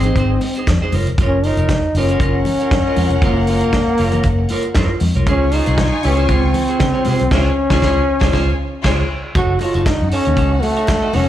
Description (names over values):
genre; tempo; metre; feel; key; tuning
disco; 117 BPM; 4/4; straight; unclear; A4 = 436 Hz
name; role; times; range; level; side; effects
breathy trombone; melody; 0.0-11.3 s; A3 to Gb4; -18 LUFS; equal; slapback echo
rich studio violin section; second line; 0.0-11.3 s; Db4 to Db6; -26 LUFS; left 2 dB; slapback echo
clean electric guitar; accompaniment; 0.0-11.3 s; Eb4 to Eb5; -24 LUFS; right 3 dB; slapback echo
vintage muted fingered electric bass; bass; 0.0-11.3 s; F1 to Db3; -17 LUFS; equal; none
warm soul drum kit; drums; 0.0-11.3 s; crash cymbal, hi-hat, kick drum, snare drum; -20 LUFS; equal; none
congas; percussion; 0.0-11.3 s; none; -28 LUFS; left 6 dB; slapback echo
group handclap; percussion; 9.6-11.0 s; none; -37 LUFS; left 3 dB; none
room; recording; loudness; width
small room ambience; live gig heard through the venue's PA, club reverb; -14 LUFS; side -12 dB against mid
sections
0.0-9.4 A section; 9.4-11.3 B section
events
band accent 7.3-9.4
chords
0.0 Fm7 (rootless); 0.9 Gbmaj7; 5.3 Dbmaj7; 9.4 Gbm6